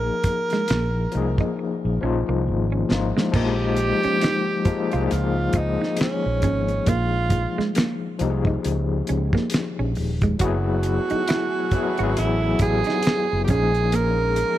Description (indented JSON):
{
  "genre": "R&B, neo-soul",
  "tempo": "68 BPM",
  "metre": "4/4",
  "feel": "swing 58% on 16ths",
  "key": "unclear",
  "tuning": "A4 = 440 Hz",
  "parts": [
    { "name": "breathy tenor saxophone", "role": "melody", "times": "0.0-14.6 s", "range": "Db4 to Bb4", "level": "-25 LUFS", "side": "right 3 dB", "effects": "none" },
    { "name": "overdriven tine electric piano", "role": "accompaniment", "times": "0.0-14.6 s", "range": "F3 to Ab4", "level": "-25 LUFS", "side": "left 5 dB", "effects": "medium tremolo" },
    { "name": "fretless electric bass", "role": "bass", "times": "0.0-14.4 s", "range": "Eb1 to Db2", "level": "-24 LUFS", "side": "equal", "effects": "none" },
    { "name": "cloth-damped thuddy drum kit", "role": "drums", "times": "0.2-14.6 s", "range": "crash cymbal, finger snaps, hi-hat, kick drum, snare drum", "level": "-24 LUFS", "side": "equal", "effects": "none" },
    { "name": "clean electric guitar", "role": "second line", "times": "0.3-14.4 s", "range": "Ab3 to Gb4", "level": "-29 LUFS", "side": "right 4 dB", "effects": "none" },
    { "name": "dark studio string section", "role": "sustained chords", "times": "10.4-14.6 s", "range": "Gb3 to Ab4", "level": "-34 LUFS", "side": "equal", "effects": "none" }
  ],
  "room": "studio reverb",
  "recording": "none",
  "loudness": "-20 LUFS",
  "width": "side -13 dB against mid",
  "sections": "0.0-3.3 A section; 3.3-14.6 B section",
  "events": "drum fill 1.6-3.3; kick muted 13.9-14.6",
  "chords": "0.0 Bb7sus2; 3.3 Bbm7; 10.4 Gbm9; 13.5 Bbm7"
}